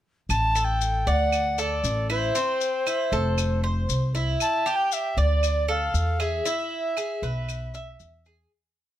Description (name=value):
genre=latin, Cuban son and guajira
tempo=117 BPM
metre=4/4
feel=straight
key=unclear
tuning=A4 = 440 Hz
part: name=breathy soprano recorder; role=melody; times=0.3-8.3 s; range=C5 to A5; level=-26 LUFS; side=left 1 dB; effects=none
part: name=upright bass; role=bass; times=0.3-8.5 s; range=F1 to E2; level=-25 LUFS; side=equal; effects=none
part: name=claves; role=percussion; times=0.3-7.7 s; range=none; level=-35 LUFS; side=right 10 dB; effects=none
part: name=maracas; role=percussion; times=0.3-8.5 s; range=none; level=-34 LUFS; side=left 13 dB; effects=none
part: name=Cuban tres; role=arpeggios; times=0.6-8.5 s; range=C4 to E5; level=-28 LUFS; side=right 2 dB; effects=none
room=light reverb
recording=close, detailed microphones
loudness=-22 LUFS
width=side -12 dB against mid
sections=0.3-8.5 verse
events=fade-out 6.5-8.5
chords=0.3 Dadd11/A; 1.3 D5; 2.4 F; 4.4 Dsus24; 5.4 Dm; 6.5 E